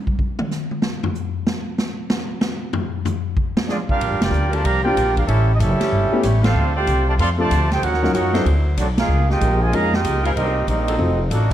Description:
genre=jazz, big band swing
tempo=189 BPM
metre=4/4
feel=swing 64% on 8ths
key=Bb major from 4.0 s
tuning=A4 = 438 Hz
part: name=swinging big-band drum kit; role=drums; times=0.1-11.5 s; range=crash cymbal, hi-hat, kick drum, ride cymbal, snare drum, toms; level=-24 LUFS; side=equal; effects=none
part: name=mellow trumpet section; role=melody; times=3.7-11.5 s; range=A3 to C6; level=-22 LUFS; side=right 3 dB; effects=none
part: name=brilliant trombone section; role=second line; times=3.7-11.5 s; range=Bb2 to G4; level=-25 LUFS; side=right 1 dB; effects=none
part: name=upright bass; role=bass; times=4.0-11.5 s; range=F1 to Gb2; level=-19 LUFS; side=equal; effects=none
part: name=bright saxophone section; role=sustained chords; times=4.5-11.4 s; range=E3 to C5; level=-30 LUFS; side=left 1 dB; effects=none
part: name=warm grand piano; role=accompaniment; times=4.8-11.2 s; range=Gb3 to Bb4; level=-24 LUFS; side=left 3 dB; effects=none
room=moderate recital hall reverb, RT60 1.6 s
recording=dark, warm production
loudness=-17 LUFS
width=side -11 dB against mid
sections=0.0-4.0 A section; 4.0-11.5 B section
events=drum solo 0.0-4.0; band accent 4.2, 6.4, 8.9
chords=0.0 N.C.; 3.4 Bb13 (rootless); 4.0 Bb6; 5.3 A7; 6.6 Dm7; 7.8 Ebm7; 8.5 D9; 9.1 Db69; 10.4 Cm7; 11.0 F7b9

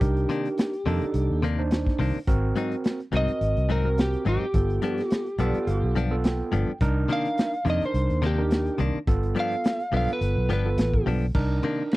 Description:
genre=straight-eighth soul blues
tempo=106 BPM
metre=4/4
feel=swing 55% on 16ths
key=C dorian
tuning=A4 = 439 Hz
part: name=electric slide guitar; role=melody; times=0.0-11.1 s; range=G4 to F5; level=-28 LUFS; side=equal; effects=slapback echo
part: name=overdriven tine electric piano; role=accompaniment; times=0.0-12.0 s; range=B3 to G5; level=-30 LUFS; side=right 3 dB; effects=none
part: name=vintage muted fingered electric bass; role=bass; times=0.0-11.6 s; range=G1 to F2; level=-25 LUFS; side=equal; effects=none
part: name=crunchy breakbeat drum kit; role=drums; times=0.0-12.0 s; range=crash cymbal, hi-hat, kick drum, ride cymbal, snare drum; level=-25 LUFS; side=equal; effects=none
part: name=direct-recorded clean electric guitar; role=stabs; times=0.3-11.8 s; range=G2 to Eb4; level=-28 LUFS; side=left 4 dB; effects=none
room=little or no reverb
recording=dry, close 1970s-style studio recording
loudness=-22 LUFS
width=side -18 dB against mid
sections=0.0-11.4 A section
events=electric slide guitar solo 0.0-11.4; tine electric piano fill 5.1-6.8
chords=0.0 Cm9; 2.3 Ab7; 4.5 G7; 6.8 Cm9; 9.1 G7; 11.4 Cm9

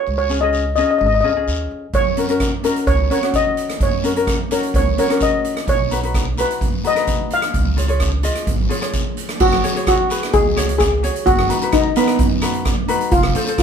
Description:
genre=calypso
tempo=129 BPM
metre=4/4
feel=straight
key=F# major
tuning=A4 = 440 Hz
part: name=steel pan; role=melody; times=0.0-13.6 s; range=B3 to E#5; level=-18 LUFS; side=left 1 dB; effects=none
part: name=upright bass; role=bass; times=0.1-13.3 s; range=F1 to F#2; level=-22 LUFS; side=right 1 dB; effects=none
part: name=guiro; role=percussion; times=0.1-13.6 s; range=none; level=-32 LUFS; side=left 4 dB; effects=none
part: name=ukulele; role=accompaniment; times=0.3-13.6 s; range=C#4 to D#5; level=-22 LUFS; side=left 3 dB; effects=none
part: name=street-band drum kit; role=drums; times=1.9-13.6 s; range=crash cymbal, hi-hat, kick drum, rim click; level=-20 LUFS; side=right 1 dB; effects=none
room=wet small room reverb, RT60 0.5 s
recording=band playing live in one room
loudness=-15 LUFS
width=side -7 dB against mid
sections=0.0-9.4 A section; 9.4-13.6 B section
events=none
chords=0.1 C#; 1.9 F#; 5.7 B; 7.5 C#; 9.4 F#sus2; 11.3 B/F#; 13.1 F

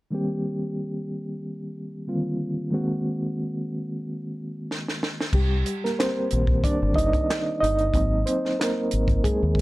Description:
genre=R&B, neo-soul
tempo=92 BPM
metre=4/4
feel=swing 53% on 16ths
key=C minor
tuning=A4 = 440 Hz
part: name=mellow reed electric piano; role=accompaniment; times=0.1-9.6 s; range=D3 to Eb5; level=-25 LUFS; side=right 1 dB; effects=fast tremolo
part: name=compact cocktail drum kit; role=drums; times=4.7-9.6 s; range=crash cymbal, handclaps, hi-hat, kick drum, snare drum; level=-26 LUFS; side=equal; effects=none
part: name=deep dub fingered electric bass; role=bass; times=5.3-9.6 s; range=G1 to Eb2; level=-24 LUFS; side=equal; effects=none
room=light reverb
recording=dark, warm production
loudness=-23 LUFS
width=side -19 dB against mid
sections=0.1-5.3 A section; 5.3-9.6 B section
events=drum fill 4.7-5.3; reed electric piano solo 5.3-9.6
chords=0.1 Cm7; 2.7 Ab9; 5.3 Cm7; 7.9 Ab9

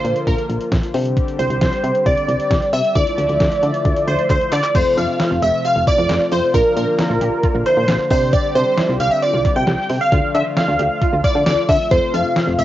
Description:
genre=synth-pop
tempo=134 BPM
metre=4/4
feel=straight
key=unclear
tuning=A4 = 436 Hz
part: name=funky polysynth comp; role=melody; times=0.0-12.6 s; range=Bb4 to G5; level=-17 LUFS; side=equal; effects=chorus, cassette tape, tape echo, plate reverb
part: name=tine electric piano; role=accompaniment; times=0.0-12.6 s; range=C4 to D5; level=-27 LUFS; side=left 8 dB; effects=medium tremolo, cassette tape, plate reverb
part: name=brassy analog pad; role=sustained chords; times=0.0-12.6 s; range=C3 to E5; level=-26 LUFS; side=equal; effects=chorus, cassette tape, plate reverb
part: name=solid FM bass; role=bass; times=0.0-12.6 s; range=F1 to D3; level=-21 LUFS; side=equal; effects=none
part: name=detuned 8-bit digital drum machine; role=drums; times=0.0-12.6 s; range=crash cymbal, handclaps, hi-hat, kick drum, snare drum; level=-20 LUFS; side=equal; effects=overdrive
part: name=wide unison pluck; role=arpeggios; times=4.7-12.6 s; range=Bb3 to G4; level=-29 LUFS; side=right 8 dB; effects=ensemble chorus, cassette tape, tape echo, plate reverb
room=moderate booth ambience, RT60 0.2 s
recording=home recording on cassette, nothing above 7.6 kHz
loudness=-14 LUFS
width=side -13 dB against mid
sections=0.0-4.7 A section; 4.7-12.6 B section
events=drum fill 4.3-4.7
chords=0.0 Bb; 0.9 Csus2; 3.0 Dmadd9; 4.7 F; 6.5 Bb; 8.1 Csus2; 10.1 Dm; 11.9 F

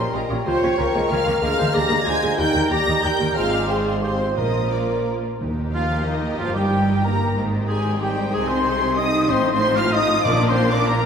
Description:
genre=classical, dramatic, fast romantic movement for symphony orchestra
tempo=186 BPM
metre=3/4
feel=rubato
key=Eb major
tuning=A4 = 440 Hz
part: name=warm symphonic violin section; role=melody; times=0.0-11.1 s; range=Eb5 to Bb6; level=-27 LUFS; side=left 1 dB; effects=none
part: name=mellow cor anglais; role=second line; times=0.0-11.1 s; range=Eb4 to F5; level=-28 LUFS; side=right 1 dB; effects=none
part: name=mellow large flute ensemble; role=second line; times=0.0-11.1 s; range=Eb5 to F6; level=-28 LUFS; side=left 1 dB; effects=none
part: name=warm symphonic violin section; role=second line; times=0.0-11.1 s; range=F4 to Bb5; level=-29 LUFS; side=left 1 dB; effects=none
part: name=mellow bassoon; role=accompaniment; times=0.0-5.2 s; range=F3 to Bb3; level=-26 LUFS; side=right 2 dB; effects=none
part: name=warm symphonic viola section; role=accompaniment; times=0.0-11.1 s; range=Eb3 to Ab4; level=-29 LUFS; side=equal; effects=none
part: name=dark French horn section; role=sustained chords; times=0.0-11.1 s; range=Eb3 to C5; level=-24 LUFS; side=left 1 dB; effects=none
part: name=warm studio double bass section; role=bass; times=0.0-11.1 s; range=G1 to Eb2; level=-28 LUFS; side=right 2 dB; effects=none
part: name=warm symphonic cello section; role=bass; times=0.0-11.1 s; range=Eb2 to Eb3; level=-27 LUFS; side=right 2 dB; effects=none
part: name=timpani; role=percussion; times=4.4-5.9, 10.3-10.7 s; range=Bb2 to Eb3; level=-28 LUFS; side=right 1 dB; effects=none
room=wet scoring stage reverb, RT60 1.9 s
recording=none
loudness=-18 LUFS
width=side -7 dB against mid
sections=0.0-5.4 A section; 5.4-11.1 B section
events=none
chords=0.5 Bbm/Db; 1.4 Bb7/D; 2.4 Eb; 3.4 Fm/Ab; 4.4 Bb; 5.4 Eb; 6.4 Eb/G; 7.4 Abmaj7; 8.3 Ab/C; 9.3 F7/A; 10.2 Bb

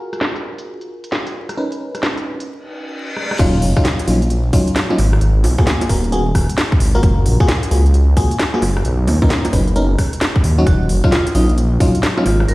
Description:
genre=UK garage, two-step garage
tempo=132 BPM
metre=4/4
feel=swing 64% on 16ths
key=Eb minor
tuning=A4 = 441 Hz
part: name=FM electric piano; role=stabs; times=0.0-12.2 s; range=Gb3 to B4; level=-21 LUFS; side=left 1 dB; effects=chorus, digital delay
part: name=garage drum kit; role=drums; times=0.1-12.5 s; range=bongos, crash cymbal, hi-hat, rim click, snare drum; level=-21 LUFS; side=equal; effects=low-pass filter on hats, low-pass filter on snare, low-pass filter on cymbals, low-pass filter on perc, low-pass filter on room
part: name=reverse cymbal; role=sound effects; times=2.7-3.4 s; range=none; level=-26 LUFS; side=left 1 dB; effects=none
part: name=dark detuned saw bass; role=bass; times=3.4-12.5 s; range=Eb1 to D#2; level=-14 LUFS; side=equal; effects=sidechain pumping
part: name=electronic kick drum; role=drums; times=3.4-11.9 s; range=none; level=-16 LUFS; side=equal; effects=none
part: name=vibraphone with medium hard mallets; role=melody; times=10.7-12.5 s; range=Eb4 to Bb4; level=-22 LUFS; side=equal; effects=none
room=light reverb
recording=played on a big sound system in a bare room, large studio reverb, vinyl crackle, low-pass filter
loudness=-13 LUFS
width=side -19 dB against mid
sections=0.0-3.4 A section; 3.4-12.5 B section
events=filter sweep 0.0-3.4; break 2.5-3.4; reverse cymbal 2.7-3.4; drum fill 3.2; drop 3.4-12.5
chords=0.0 Gbmaj9; 1.6 Bmaj9; 3.4 Ebm9; 5.0 Abm9; 7.0 Gbmaj9; 8.8 Bmaj9; 10.7 Ebm9

